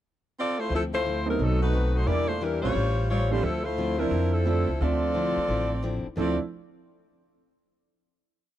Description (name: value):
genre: jazz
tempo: 176 BPM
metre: 4/4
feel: swing 63% on 8ths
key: D minor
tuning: A4 = 441 Hz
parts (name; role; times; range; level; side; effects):
- warm saxophone section; melody; 0.4-6.4 s; F3 to D5; -27 LUFS; left 1 dB; none
- picked steel-string acoustic guitar; accompaniment; 0.7-6.4 s; A2 to G4; -35 LUFS; left 4 dB; none
- upright bass; bass; 0.7-6.4 s; A1 to F2; -27 LUFS; equal; none
- clear concert grand piano; accompaniment; 1.3-6.4 s; E3 to E5; -31 LUFS; right 8 dB; none
room: studio ambience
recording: dry, close 1970s-style studio recording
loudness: -24 LUFS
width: side -12 dB against mid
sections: 0.0-0.7 pickup bar; 0.7-6.2 A section; 6.2-7.5 final chord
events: none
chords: 0.0 Amadd11; 0.7 Dm9; 1.4 B7b9; 2.1 Em7b5; 2.8 A7alt; 3.4 Dm9